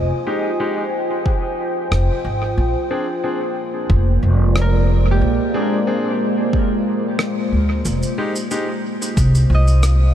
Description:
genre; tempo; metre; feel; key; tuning
ambient dub; 91 BPM; 4/4; swing 54% on 16ths; F dorian; A4 = 439 Hz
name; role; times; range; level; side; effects
deep dark ambient pad; sustained chords; 0.0-10.1 s; Ab3 to Ab5; -21 LUFS; equal; chorus, built-in reverb
concert harp; arpeggios; 0.0-10.1 s; G4 to Eb5; -32 LUFS; left 1 dB; low-pass filter, diffuse ambient delay
upright bass; bass; 0.0-10.1 s; F1 to D2; -15 LUFS; equal; none
clear upright piano; stabs; 0.3-8.7 s; Ab3 to Ab4; -27 LUFS; left 1 dB; low-pass filter, dub echo
electronic kick drum; drums; 1.3-9.3 s; none; -19 LUFS; equal; overdrive, studio ambience
rim click and shaker; drums; 1.9-10.0 s; none; -29 LUFS; equal; studio ambience, dub echo
room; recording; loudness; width
moderate huge ambient reverb, RT60 7.3 s; dreamy mix soaked in reverb; -16 LUFS; side -10 dB against mid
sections
0.0-10.1 A section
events
none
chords
0.0 Fm7; 2.6 Bb7; 7.9 Fm7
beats
0.60 1.26 1.92 | 2.58 3.24 3.90 4.56 | 5.21 5.88 6.53 7.19 | 7.85 8.51 9.17 9.83

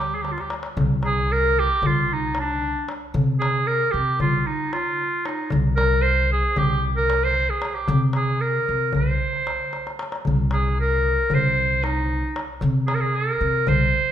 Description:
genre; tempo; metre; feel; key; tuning
Turkish makam ensemble; 228 BPM (eighths); 9/8; straight; C makam nihavent; A4 = 440 Hz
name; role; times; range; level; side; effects
bright clarinet; melody; 0.0-14.1 s; D4 to C5; -22 LUFS; right 1 dB; none
upright bass; bass; 0.0-13.9 s; C2 to C3; -24 LUFS; equal; none
darbuka; percussion; 0.2-13.8 s; none; -26 LUFS; left 1 dB; none
room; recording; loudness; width
wet recital hall reverb, RT60 1.4 s; minimal, uncompressed stereo recording; -19 LUFS; side -10 dB against mid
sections
0.8-14.1 A section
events
drum fill 0.2-0.8, 9.7-10.3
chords
none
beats
0.24 0.51 | 0.77 1.03 1.30 1.56 1.83 2.09 2.35 2.62 2.88 | 3.14 3.41 3.67 3.94 4.20 4.46 4.73 4.99 5.25 | 5.52 5.78 6.04 6.31 6.57 6.83 7.10 7.36 7.62 | 7.89 8.15 8.41 8.68 8.94 9.20 9.47 9.73 9.99 | 10.26 10.52 10.78 11.05 11.31 11.57 11.84 12.10 12.36 | 12.62 12.89 13.15 13.41 13.68 13.94

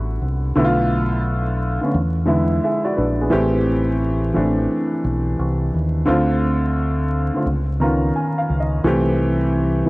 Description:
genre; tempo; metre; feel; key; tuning
hip hop; 87 BPM; 4/4; swing 65% on 16ths; unclear; A4 = 440 Hz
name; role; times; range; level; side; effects
dark upright piano; accompaniment; 0.0-9.9 s; D3 to A#5; -19 LUFS; equal; cassette tape
deep dub fingered electric bass; bass; 0.0-9.9 s; A1 to E2; -21 LUFS; equal; none
room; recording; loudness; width
light reverb, small room reverb; home recording on cassette, vinyl crackle, nothing above 10.6 kHz; -17 LUFS; side -21 dB against mid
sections
0.0-9.9 A section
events
upright piano fill 7.4-8.8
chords
0.0 Em7; 0.5 Bm7b5; 1.9 E7; 3.3 Am7; 6.1 Dm7; 7.4 C#9; 8.8 C6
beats
| 0.55 1.24 1.93 2.62 | 3.31 4.00 4.69 5.38 | 6.07 6.75 7.44 8.13 | 8.82 9.51

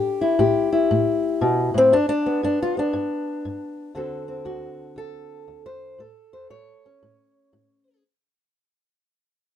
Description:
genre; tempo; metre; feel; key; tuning
acoustic country blues, solo or duo; 118 BPM; 4/4; swing 64% on 8ths; unclear; A4 = 440 Hz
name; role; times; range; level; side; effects
fingerpicked old ladder-braced acoustic guitar; solo; 0.0-8.0 s; D2 to C#5; -20 LUFS; left 2 dB; none
room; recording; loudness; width
light reverb; dark, warm production; -19 LUFS; side -10 dB against mid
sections
0.0-8.0 A section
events
fade-out 0.0-8.0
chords
0.0 A5; 1.9 G; 4.0 D7; 6.0 A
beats
0.39 0.90 1.41 | 1.92 2.43 2.94 3.45 | 3.96 4.46 4.97 5.48 | 5.99 6.50 7.01 7.52

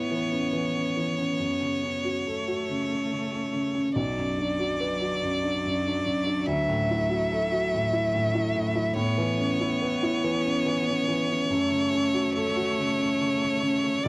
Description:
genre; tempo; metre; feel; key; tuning
neoclassical piano and strings; 71 BPM; 3/4; rubato; unclear; A4 = 440 Hz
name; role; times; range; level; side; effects
bright violin; melody; 0.0-14.1 s; C#5 to E5; -31 LUFS; equal; cassette tape
clear cello; second line; 0.0-14.1 s; F#3 to B3; -36 LUFS; equal; cassette tape
dark baby grand piano; accompaniment; 0.0-14.1 s; B1 to B4; -30 LUFS; equal; cassette tape
room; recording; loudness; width
moderate booth ambience, RT60 0.2 s; home recording on cassette; -27 LUFS; mono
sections
0.0-14.1 A section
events
none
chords
0.0 Aadd9; 1.4 F#m; 4.0 Bm; 6.5 Dadd9; 9.0 Aadd9; 11.5 F#m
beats
0.54 | 1.40 2.27 3.12 | 3.96 4.80 5.64 | 6.47 7.30 8.13 | 8.97 9.81 10.65 | 11.49 12.34 13.19 | 14.03

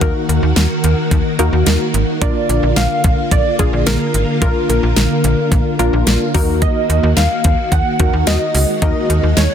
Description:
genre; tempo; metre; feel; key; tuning
synth-pop; 109 BPM; 4/4; straight; Eb minor; A4 = 440 Hz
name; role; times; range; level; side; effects
funky polysynth comp; melody; 0.0-9.5 s; Bb4 to Gb5; -20 LUFS; right 1 dB; chorus, ping-pong delay
funky polysynth comp; accompaniment; 0.0-9.5 s; Bb3 to Bb4; -21 LUFS; left 2 dB; chorus
ensemble organ-string; sustained chords; 0.0-9.5 s; D3 to Gb4; -20 LUFS; left 1 dB; ensemble chorus
slap-like FM bass; bass; 0.0-9.5 s; Ab1 to Eb2; -16 LUFS; equal; none
pop drum kit; drums; 0.0-9.5 s; hi-hat, kick drum, snare drum; -17 LUFS; equal; none
room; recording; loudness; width
light reverb; dense, heavily limited modern master; -12 LUFS; side -8 dB against mid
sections
0.0-9.5 A section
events
none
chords
0.0 Ebm; 2.2 Bb; 6.3 Ebm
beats
| 0.01 0.56 1.11 1.67 | 2.22 2.77 3.32 3.87 | 4.42 4.97 5.52 6.07 | 6.62 7.17 7.72 8.27 | 8.82 9.37

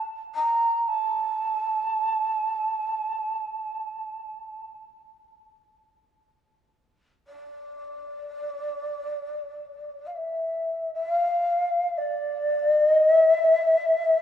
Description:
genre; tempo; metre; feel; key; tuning
japanese traditional, Japanese chamber music; free time; none; none; A miyako bushi; A4 = 438 Hz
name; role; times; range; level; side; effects
breathy mellow long shakuhachi; solo; 0.3-14.2 s; D5 to Bb5; -23 LUFS; equal; none
room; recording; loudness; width
wet church reverb, RT60 3.7 s; dark, warm production; -22 LUFS; side -10 dB against mid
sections
0.0-14.2 A section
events
none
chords
none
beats
free time

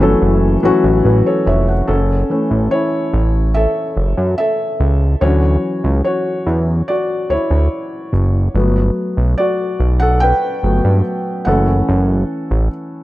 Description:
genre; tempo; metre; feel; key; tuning
contemporary R&B; 72 BPM; 4/4; straight; F# phrygian; A4 = 439 Hz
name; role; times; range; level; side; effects
felt-muted upright piano; accompaniment; 0.0-13.0 s; E3 to G5; -16 LUFS; left 1 dB; none
fat analog bass; bass; 0.0-12.7 s; E#1 to G2; -14 LUFS; equal; none
room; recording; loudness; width
light reverb, small room ambience; dark, warm production; -13 LUFS; side -16 dB against mid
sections
0.0-1.9 A section; 1.9-13.0 B section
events
felt piano solo 1.9-13.0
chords
0.0 F#m7; 5.2 Dmaj7; 8.6 Gmaj7; 11.5 F#m7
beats
0.22 1.05 | 1.88 2.72 3.55 4.38 | 5.22 6.05 6.88 7.72 | 8.55 9.38 10.22 11.05 | 11.88 12.72

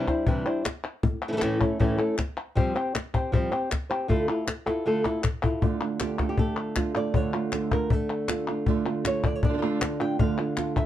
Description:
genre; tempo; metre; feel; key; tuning
flamenco; 157 BPM; 4/4; straight; unclear; A4 = 439 Hz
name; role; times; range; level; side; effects
flamenco guitar; melody; 0.0-10.9 s; A2 to G5; -27 LUFS; equal; none
cajon; percussion; 0.1-10.9 s; none; -26 LUFS; left 2 dB; none
palmas hand claps; percussion; 0.1-10.9 s; none; -34 LUFS; left 3 dB; none
flamenco guitar; stabs; 5.6-10.9 s; D3 to F4; -29 LUFS; right 6 dB; none
room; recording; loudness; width
moderate studio reverb, RT60 0.5 s; dark, warm production; -24 LUFS; side -12 dB against mid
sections
0.0-5.6 A section; 5.6-10.9 B section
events
drum fill 4.7-5.6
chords
0.0 Cadd9; 1.0 A; 2.6 Fsus2; 4.1 Dmadd9; 5.6 Dm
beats
0.27 0.66 | 1.04 1.42 1.80 2.19 | 2.57 2.95 3.33 3.71 | 4.09 4.47 4.86 5.24 | 5.62 6.00 6.38 6.76 | 7.14 7.53 7.91 8.29 | 8.67 9.05 9.43 9.81 | 10.19 10.57

